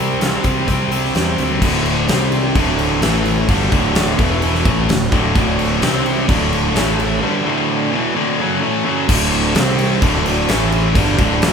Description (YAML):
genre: classic rock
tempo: 129 BPM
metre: 4/4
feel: straight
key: D mixolydian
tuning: A4 = 440 Hz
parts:
  - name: crunchy overdriven guitar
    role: riff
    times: 0.0-11.5 s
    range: D2 to C4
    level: -20 LUFS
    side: right 6 dB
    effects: none
  - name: tight distorted guitar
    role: riff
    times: 0.0-11.5 s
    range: D2 to C4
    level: -19 LUFS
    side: left 6 dB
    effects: distortion
  - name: fuzz fingered electric bass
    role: bass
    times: 0.0-11.5 s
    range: D1 to E2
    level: -21 LUFS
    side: equal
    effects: overdrive
  - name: big rock drum kit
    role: drums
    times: 0.2-11.5 s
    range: crash cymbal, hi-hat, kick drum, snare drum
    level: -19 LUFS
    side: equal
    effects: none
  - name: bright tonewheel organ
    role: sustained chords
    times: 1.6-11.5 s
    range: D4 to A5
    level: -31 LUFS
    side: right 1 dB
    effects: none
room: moderate large studio reverb, RT60 1.2 s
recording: band playing live in one room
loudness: -14 LUFS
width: side -6 dB against mid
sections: 0.0-1.6 A section; 1.6-9.1 B section; 9.1-11.5 B section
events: none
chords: 0.0 C; 1.6 D; 2.1 C5; 2.6 D; 3.0 A5; 3.5 D; 4.2 E5; 4.7 D; 5.8 C5; 6.3 D; 6.8 A5; 7.2 D; 9.6 C5; 10.0 D; 10.5 A5; 10.9 D